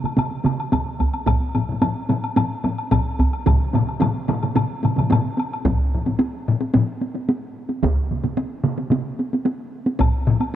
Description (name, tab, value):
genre	japanese traditional, taiko drum ensemble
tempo	110 BPM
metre	4/4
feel	straight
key	none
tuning	none
part	taiko ensemble	percussion	0.0-10.5 s	none	-23 LUFS	right 1 dB	none
part	taiko ensemble	percussion	0.0-9.0 s	none	-24 LUFS	right 3 dB	none
part	woodblock	percussion	0.1-5.7, 10.0-10.5 s	none	-29 LUFS	left 2 dB	none
part	taiko ensemble	percussion	0.7-10.1 s	none	-21 LUFS	right 1 dB	none
part	taiko ensemble	percussion	1.3-10.4 s	none	-23 LUFS	left 4 dB	none
room	moderate huge ambient reverb, RT60 4.7 s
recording	dark, warm production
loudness	-19 LUFS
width	side -11 dB against mid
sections	0.0-5.7 A section; 5.7-10.6 B section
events	none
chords	none